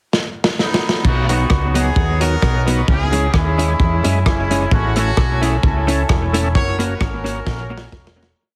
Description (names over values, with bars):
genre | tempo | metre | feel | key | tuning
ska | 131 BPM | 4/4 | swing 54% on 8ths | B major | A4 = 442 Hz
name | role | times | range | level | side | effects
crunchy breakbeat drum kit | drums | 0.1-8.3 s | crash cymbal, hi-hat, kick drum, rim click, snare drum | -21 LUFS | equal | analog delay
warm horn section | melody | 0.6-8.2 s | F#3 to C#5 | -24 LUFS | equal | analog delay
hollow-body short-scale fingered electric bass | bass | 1.1-8.3 s | E1 to F#2 | -22 LUFS | equal | none
vintage hollow-body jazz guitar | accompaniment | 1.3-8.3 s | F#3 to F#4 | -26 LUFS | equal | analog delay
overdriven tonewheel organ | stabs | 1.3-8.3 s | F#3 to A#4 | -29 LUFS | equal | slow rotary speaker, analog delay
room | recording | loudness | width
light reverb, small room ambience | heavily compressed radio sound, multiband compression | -17 LUFS | mono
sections
0.0-1.0 pickup bar; 1.0-8.4 head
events
drum fill 0.1-1.0, 7.5-8.4; fade-out 6.5-8.4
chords
0.0 B; 2.9 C#m; 4.7 A; 6.5 F#